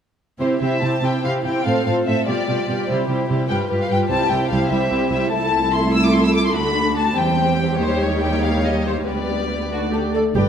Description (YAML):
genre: quick classical-period movement for string orchestra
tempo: 97 BPM (dotted quarters)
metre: 6/8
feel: rubato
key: C major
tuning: A4 = 441 Hz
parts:
  - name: rich studio violin section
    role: melody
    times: 0.4-10.5 s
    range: C5 to E6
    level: -23 LUFS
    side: left 4 dB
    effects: none
  - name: warm chamber violin section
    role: second line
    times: 0.4-10.5 s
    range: E4 to D5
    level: -24 LUFS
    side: left 1 dB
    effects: none
  - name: dark chamber viola section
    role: accompaniment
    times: 0.4-10.4 s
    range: G3 to A4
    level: -23 LUFS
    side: right 1 dB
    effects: none
  - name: dark chamber cello section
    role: bass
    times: 0.4-10.4 s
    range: C2 to C3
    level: -22 LUFS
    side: right 3 dB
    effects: none
  - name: rich studio double bass section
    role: bass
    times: 10.4 s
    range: G1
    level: -17 LUFS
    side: right 3 dB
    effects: none
room: wet concert hall reverb, RT60 1.9 s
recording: dark, warm production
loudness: -17 LUFS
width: side -8 dB against mid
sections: 0.4-10.4 A section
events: none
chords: 0.4 C; 1.7 F/A; 2.3 G7/B; 2.9 C; 3.5 G7; 4.1 C; 5.3 Am/C; 6.5 D; 7.2 C/E; 7.8 Eb7; 9.1 G/D; 9.7 D